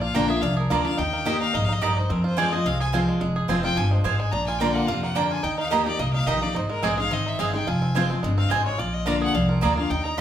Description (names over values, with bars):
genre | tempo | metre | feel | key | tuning
bluegrass | 215 BPM | 4/4 | swing 53% on 8ths | F dorian | A4 = 440 Hz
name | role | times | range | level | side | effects
bluegrass banjo | melody | 0.0-10.2 s | F3 to Ab4 | -30 LUFS | right 1 dB | none
clear fiddle | melody | 0.0-10.2 s | Bb4 to C6 | -29 LUFS | left 2 dB | none
picked steel-string acoustic guitar | accompaniment | 0.0-10.2 s | F2 to Ab4 | -25 LUFS | left 1 dB | none
upright bass | bass | 0.0-10.2 s | F1 to F2 | -28 LUFS | equal | none
mandolin | stabs | 0.1-10.2 s | Bb3 to Bb5 | -27 LUFS | right 5 dB | none
room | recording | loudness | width
wet large studio reverb, RT60 0.9 s | band playing live in one room | -21 LUFS | side -10 dB against mid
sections
0.0-3.2 A section; 3.2-10.2 A section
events
fiddle solo 0.0-10.2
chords
0.0 Bb; 1.0 Eb; 2.1 Fm; 4.3 Bb; 5.4 Eb; 6.6 Ab; 7.7 Fm; 8.8 Bb